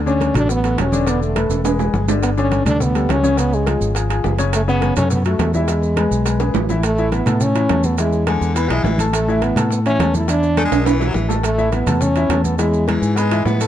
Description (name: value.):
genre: latin, salsa.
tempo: 208 BPM.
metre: 4/4.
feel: straight.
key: A major.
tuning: A4 = 440 Hz.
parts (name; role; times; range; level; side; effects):
fingered electric bass; bass; 0.0-13.7 s; E1 to A2; -19 LUFS; equal; none.
warm French horn; melody; 0.1-12.9 s; G#3 to E4; -21 LUFS; equal; none.
warm baby grand piano; accompaniment; 0.1-13.7 s; C#3 to B5; -22 LUFS; left 3 dB; none.
congas; percussion; 0.1-13.6 s; none; -26 LUFS; equal; none.
maracas; percussion; 0.1-13.7 s; none; -34 LUFS; right 8 dB; none.
bongos; percussion; 0.2-13.6 s; none; -30 LUFS; left 4 dB; none.
timbales; percussion; 0.2-13.7 s; none; -25 LUFS; right 8 dB; none.
breathy baritone saxophone; second line; 8.3-13.7 s; D3 to B3; -26 LUFS; left 2 dB; none.
room: light reverb.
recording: dark, warm production.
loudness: -15 LUFS.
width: side -11 dB against mid.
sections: 0.0-6.8 A section; 6.8-13.7 B section.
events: drum fill 1.5-2.2, 6.4-6.8, 10.7-11.4.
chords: 0.0 D; 1.1 E7sus4; 1.7 E7; 2.2 Gadd9; 3.4 C#; 4.5 F#m; 5.7 E; 6.8 Aadd9; 8.0 E7; 9.1 Aadd9; 10.3 E7; 11.4 Aadd9; 12.6 E.